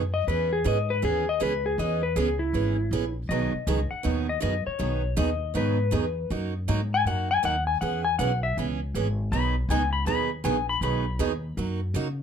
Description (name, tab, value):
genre	country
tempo	159 BPM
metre	4/4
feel	swing 64% on 8ths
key	B major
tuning	A4 = 440 Hz
part	upright bass	bass	0.0-12.2 s	G#1 to C#3	-28 LUFS	equal	none
part	clean lap steel guitar	second line	0.1-11.6 s	E4 to B5	-27 LUFS	left 5 dB	none
part	picked steel-string acoustic guitar	accompaniment	0.3-12.1 s	B2 to G#4	-29 LUFS	right 8 dB	none
room	moderate club reverb, RT60 0.5 s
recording	none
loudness	-24 LUFS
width	side -8 dB against mid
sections	0.0-12.2 A section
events	electric slide guitar solo 0.0-12.2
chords	0.3 E6; 3.3 B6; 6.3 F#6; 7.8 E6; 9.3 B6; 11.6 F#6